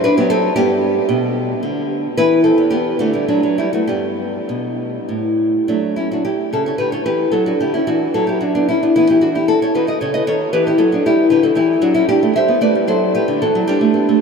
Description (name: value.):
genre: classical, baroque-style dance for nylon-string guitar.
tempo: 65-78 BPM (dotted quarters).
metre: 6/8.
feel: rubato.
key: G major, D major from 5.7 s.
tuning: A4 = 439 Hz.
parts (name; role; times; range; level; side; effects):
nylon-string guitar; solo; 0.0-14.2 s; E2 to E5; -14 LUFS; equal; none.
room: wet huge ambient reverb, RT60 8.1 s.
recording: in a vast, echoing space.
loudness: -14 LUFS.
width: side -5 dB against mid.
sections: 0.0-5.7 A section; 5.7-14.2 A section.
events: none.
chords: 0.0 D7/F#; 0.6 G; 2.2 C/E; 3.0 D; 3.9 G; 5.7 D/F#; 6.5 A7/C#; 7.3 D; 9.0 E5; 9.8 B7; 10.5 Em; 12.1 G; 12.9 D/F#; 13.7 G.